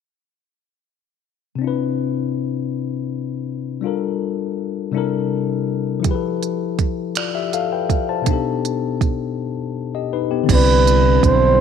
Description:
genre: slow six-eight R&B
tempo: 54 BPM (dotted quarters)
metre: 6/8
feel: straight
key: C major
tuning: A4 = 441 Hz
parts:
  - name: tine electric piano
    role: accompaniment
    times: 1.6-11.6 s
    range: B2 to A5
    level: -21 LUFS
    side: left 9 dB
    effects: none
  - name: smooth R&B drum kit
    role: drums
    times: 6.0-11.4 s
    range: crash cymbal, finger snaps, hi-hat, kick drum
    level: -20 LUFS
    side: right 5 dB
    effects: none
  - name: breathy flugelhorn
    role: melody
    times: 10.5-11.6 s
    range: B4 to C5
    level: -15 LUFS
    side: right 3 dB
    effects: slapback echo
  - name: hollow soft pad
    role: sustained chords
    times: 10.7-11.6 s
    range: D3 to E4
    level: -26 LUFS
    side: right 3 dB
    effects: chorus
  - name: smooth synth bass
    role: bass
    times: 10.5-11.6 s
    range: B1 to C2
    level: -16 LUFS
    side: right 2 dB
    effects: none
room: light reverb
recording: 1960s-style stereo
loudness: -18 LUFS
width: side -7 dB against mid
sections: 1.6-10.5 A section; 10.5-11.6 B section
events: break 9.4-10.5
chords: 1.6 Cmaj9; 3.8 Gm9; 4.9 C13; 6.0 Fmaj9#11; 8.3 B7alt; 10.5 Cmaj9

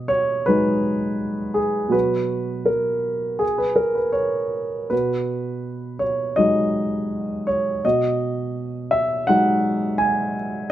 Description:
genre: neoclassical minimalist piano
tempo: 82 BPM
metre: 4/4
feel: rubato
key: B major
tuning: A4 = 440 Hz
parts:
  - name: warm grand piano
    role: solo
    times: 0.0-10.7 s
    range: B2 to G#5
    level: -19 LUFS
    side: equal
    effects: none
room: light reverb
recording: none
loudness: -19 LUFS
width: side -12 dB against mid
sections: 0.0-10.7 A section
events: none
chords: 0.0 B6; 1.9 F#/B; 4.9 B6

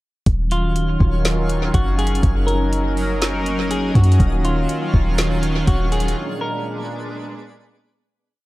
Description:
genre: hip hop, atmospheric cloud-rap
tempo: 122 BPM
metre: 4/4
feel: half-time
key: Eb minor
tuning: A4 = 440 Hz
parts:
  - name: sweeping resonant pad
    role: sustained chords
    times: 0.3-8.1 s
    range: Bb2 to Bb4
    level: -23 LUFS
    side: right 1 dB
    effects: chorus, sidechain pumping
  - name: soft 808-style bass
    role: bass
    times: 0.3-6.1 s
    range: Eb1 to Gb2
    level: -19 LUFS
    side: equal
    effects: none
  - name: smooth R&B drum kit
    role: drums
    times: 0.3-6.2 s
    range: hi-hat, kick drum, snare drum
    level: -20 LUFS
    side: equal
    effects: tape echo
  - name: twinkling granular texture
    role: texture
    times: 0.7-8.1 s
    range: Gb3 to F5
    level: -31 LUFS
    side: left 1 dB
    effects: built-in reverb
  - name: semi-hollow electric guitar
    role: melody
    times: 0.5-7.1 s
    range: F4 to Bb4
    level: -28 LUFS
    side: left 1 dB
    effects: low-pass filter, tape echo
room: little or no reverb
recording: echo-heavy mix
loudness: -16 LUFS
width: side -18 dB against mid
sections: 0.3-8.1 verse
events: break 6.2-8.1; fade-out 6.2-8.1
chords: 0.3 Ebm9; 2.2 Gb6; 4.2 Ebm9; 6.2 Bb7b9

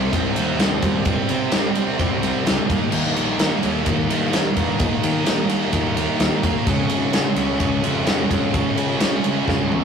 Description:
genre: quiet-loud alternative rock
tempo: 128 BPM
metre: 4/4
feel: straight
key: unclear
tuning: A4 = 440 Hz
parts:
  - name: sludgy distorted guitar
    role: riff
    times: 0.0-9.8 s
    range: C3 to F4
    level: -27 LUFS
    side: right 1 dB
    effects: overdrive
  - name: thick fuzz guitar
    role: riff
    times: 0.0-9.8 s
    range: C3 to Eb4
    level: -26 LUFS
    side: left 5 dB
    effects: distortion
  - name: tight distorted guitar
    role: riff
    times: 0.0-9.8 s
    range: C3 to Eb4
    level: -25 LUFS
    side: right 6 dB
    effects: distortion
  - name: fuzz picked electric bass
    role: bass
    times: 0.0-9.8 s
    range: Ab1 to Eb3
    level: -27 LUFS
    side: equal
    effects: overdrive
  - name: big rock drum kit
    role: drums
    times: 0.1-9.8 s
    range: crash cymbal, kick drum, ride cymbal, snare drum, toms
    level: -20 LUFS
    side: equal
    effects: none
room: light reverb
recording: rough rehearsal-room recording, tube saturation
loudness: -18 LUFS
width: side -6 dB against mid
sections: 0.0-9.8 A section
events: drum fill 9.5-9.8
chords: 0.0 Cm; 2.7 Eb; 6.7 Db

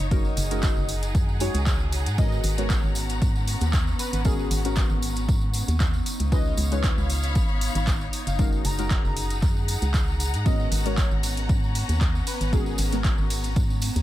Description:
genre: deep house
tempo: 116 BPM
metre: 4/4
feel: swing 54% on 16ths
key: G# dorian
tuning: A4 = 441 Hz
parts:
  - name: breathy flute-like synth lead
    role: melody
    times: 0.0-1.1 s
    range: D#5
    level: -38 LUFS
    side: right 1 dB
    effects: wide subtle chorus, ping-pong delay
  - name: warbly tape-like pad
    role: sustained chords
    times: 0.0-14.0 s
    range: B3 to D#6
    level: -37 LUFS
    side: right 2 dB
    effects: chorus, built-in reverb, sidechain pumping
  - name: deep mellow chord stab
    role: stabs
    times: 0.0-14.0 s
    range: G#3 to C#5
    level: -33 LUFS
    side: left 2 dB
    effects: chorus, sidechain pumping, digital delay
  - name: organ-like FM bass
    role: bass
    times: 0.0-14.0 s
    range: F#1 to G#2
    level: -26 LUFS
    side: equal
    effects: sidechain pumping
  - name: warm studio string section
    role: texture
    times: 0.0-14.0 s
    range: B3 to B5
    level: -35 LUFS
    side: left 2 dB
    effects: sidechain pumping
  - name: deep house drum kit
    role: drums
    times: 0.1-14.0 s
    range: handclaps, hi-hat, ride cymbal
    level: -33 LUFS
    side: equal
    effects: overdrive, small room ambience
  - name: electronic kick drum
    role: drums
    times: 0.1-13.7 s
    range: none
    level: -24 LUFS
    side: equal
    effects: overdrive, small room ambience
  - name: tambourine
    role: percussion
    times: 0.1-14.0 s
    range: none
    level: -37 LUFS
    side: right 3 dB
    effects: none
  - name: airy dreamy lead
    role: melody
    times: 2.2-12.7 s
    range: G#4 to A#5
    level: -36 LUFS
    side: left 1 dB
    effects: chorus, ping-pong delay
room: little or no reverb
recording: none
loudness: -21 LUFS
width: side -14 dB against mid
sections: 0.0-14.0 A section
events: none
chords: 0.1 F#69; 2.2 G#m11; 6.1 C#9; 8.4 F#69; 10.5 G#m11

